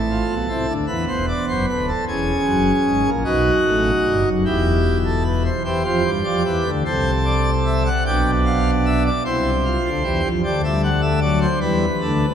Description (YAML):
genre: classical, baroque-style 3-part fugue for pipe organ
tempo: 50 BPM (dotted quarters)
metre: 6/8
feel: straight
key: C major from 5.7 s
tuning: A4 = 441 Hz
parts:
  - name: pipe organ, plenum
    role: solo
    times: 0.0-12.3 s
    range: D1 to G5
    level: -17 LUFS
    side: equal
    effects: none
room: wet cathedral reverb, RT60 4.4 s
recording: none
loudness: -17 LUFS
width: side -8 dB against mid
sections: 0.0-5.7 A section; 5.7-12.3 B section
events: none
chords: 0.0 Am; 0.9 E5; 2.1 F#7/E; 3.3 B; 4.5 Em; 5.7 C/E; 6.9 D7/C; 8.1 G/B; 9.3 C; 10.5 G5/D; 11.6 A7(no3)